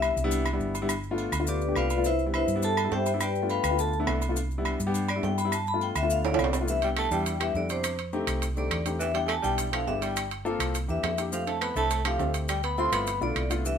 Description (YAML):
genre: Afro-Cuban jazz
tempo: 207 BPM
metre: 4/4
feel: straight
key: C major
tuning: A4 = 439 Hz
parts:
  - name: vibraphone with medium hard mallets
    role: melody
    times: 0.0-13.8 s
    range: D4 to C6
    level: -29 LUFS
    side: left 2 dB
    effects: none
  - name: warm baby grand piano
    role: accompaniment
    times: 0.0-13.8 s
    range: G3 to A4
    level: -32 LUFS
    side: left 2 dB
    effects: none
  - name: hollow-body short-scale fingered electric bass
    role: bass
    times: 0.0-13.8 s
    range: G1 to G2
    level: -31 LUFS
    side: equal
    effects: none
  - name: agogo bells and timbales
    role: percussion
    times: 0.0-13.7 s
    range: none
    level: -33 LUFS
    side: right 7 dB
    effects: none
  - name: claves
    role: percussion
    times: 0.0-13.5 s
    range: none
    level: -38 LUFS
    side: left 5 dB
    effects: none
  - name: maracas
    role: percussion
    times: 0.0-13.8 s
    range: none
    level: -40 LUFS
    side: left 5 dB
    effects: none
  - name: growling tenor saxophone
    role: second line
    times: 6.2-13.8 s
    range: C3 to C4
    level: -34 LUFS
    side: right 5 dB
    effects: none
room: moderate studio reverb, RT60 0.9 s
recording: minimal, uncompressed stereo recording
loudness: -25 LUFS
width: side -7 dB against mid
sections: 0.0-6.7 A section; 6.7-13.8 B section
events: vibraphone solo 0.0-6.7; drum fill 6.2-6.7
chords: 0.0 Cmaj7; 0.9 G7; 2.0 Cmaj7; 3.2 G7; 4.4 Cmaj7; 5.5 G7; 6.7 Cmaj9; 7.8 F9; 9.0 Em7; 10.2 Gm11; 10.7 C7; 11.3 Fmaj9; 12.5 Dm7; 13.1 G13